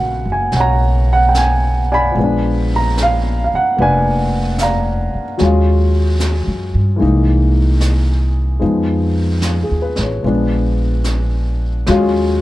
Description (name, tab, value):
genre	jazz ballad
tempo	74 BPM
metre	4/4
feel	swing 68% on 8ths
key	unclear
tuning	A4 = 440 Hz
part	warm upright piano	accompaniment	0.0-12.4 s	Db3 to Cb6	-16 LUFS	left 1 dB	none
part	upright bass	bass	0.0-12.4 s	F1 to G2	-16 LUFS	equal	none
part	jazz brush drum kit	drums	0.5-12.4 s	brushed snare drum, hi-hat, snare drum	-28 LUFS	right 1 dB	none
room	light reverb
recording	dark, warm production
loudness	-13 LUFS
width	side -16 dB against mid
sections	0.0-11.9 A section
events	none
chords	0.0 Abm11; 2.2 Bb7b9; 5.4 Ebm11; 7.0 C7alt; 8.6 Fm7b5; 10.2 Bb7b9; 11.9 Ebm11